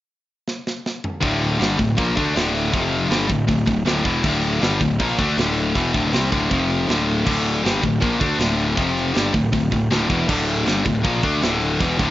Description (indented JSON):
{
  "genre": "heavy metal",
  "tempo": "159 BPM",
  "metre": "4/4",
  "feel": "straight",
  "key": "D minor",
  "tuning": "A4 = 443 Hz",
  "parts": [
    { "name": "tight metal drum kit", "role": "drums", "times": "0.5-12.1 s", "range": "crash cymbal, hi-hat, kick drum, snare drum, toms", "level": "-25 LUFS", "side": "right 1 dB", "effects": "none" },
    { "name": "high-gain distorted guitar", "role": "riff", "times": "1.2-12.1 s", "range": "D2 to D4", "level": "-19 LUFS", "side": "left 2 dB", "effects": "distortion" },
    { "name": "scooped high-gain guitar", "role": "riff", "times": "1.2-12.1 s", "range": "D2 to D4", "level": "-28 LUFS", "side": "right 9 dB", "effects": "distortion" },
    { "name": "fuzz picked electric bass", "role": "bass", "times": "1.2-12.1 s", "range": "D1 to D2", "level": "-26 LUFS", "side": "right 1 dB", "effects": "overdrive" }
  ],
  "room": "studio ambience",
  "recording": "rough home demo mix, nothing above 7.5 kHz",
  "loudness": "-17 LUFS",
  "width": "side -14 dB against mid",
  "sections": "0.0-1.2 A section; 1.2-12.1 B section",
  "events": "drum fill 0.5-1.2",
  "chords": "0.0 N.C.; 1.2 Dm; 2.7 F5; 3.1 D5; 6.5 F5; 6.9 Dm; 8.8 F5; 9.1 Dm",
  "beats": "0.09 0.47 0.84 | 1.22 1.60 1.98 2.35 | 2.73 3.11 3.48 3.86 | 4.24 4.62 4.99 5.37 | 5.75 6.13 6.50 6.88 | 7.26 7.64 8.01 8.39 | 8.77 9.15 9.53 9.90 | 10.28 10.66 11.04 11.42 | 11.79"
}